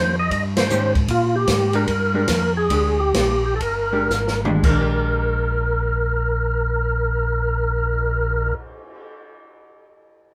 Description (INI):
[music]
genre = soul jazz organ trio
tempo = 108-155 BPM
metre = 4/4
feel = swing 65% on 8ths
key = Bb mixolydian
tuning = A4 = 440 Hz
[part]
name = percussive tonewheel organ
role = melody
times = 0.0-8.5 s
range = F4 to Eb5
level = -24 LUFS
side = equal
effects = slow rotary speaker, overdrive, chorus vibrato
[part]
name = vintage hollow-body jazz guitar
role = accompaniment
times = 0.0-8.7 s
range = Eb3 to C5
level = -28 LUFS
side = equal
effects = none
[part]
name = mellow tonewheel organ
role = bass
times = 0.0-8.5 s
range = G1 to Bb2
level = -25 LUFS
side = equal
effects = chorus vibrato, slow rotary speaker
[part]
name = open jazz drum kit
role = drums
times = 0.3-8.9 s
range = crash cymbal, cymbal swell, hi-hat, kick drum, ride cymbal, snare drum, toms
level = -26 LUFS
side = equal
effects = none
[sound]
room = moderate club reverb, RT60 0.5 s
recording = none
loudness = -20 LUFS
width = mono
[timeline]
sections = 0.0-4.6 A section; 4.6-9.1 B section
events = band accent 0.5; slowing down 1.1-4.6; drum fill 4.1-4.6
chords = 0.0 Eb13; 1.1 Bb6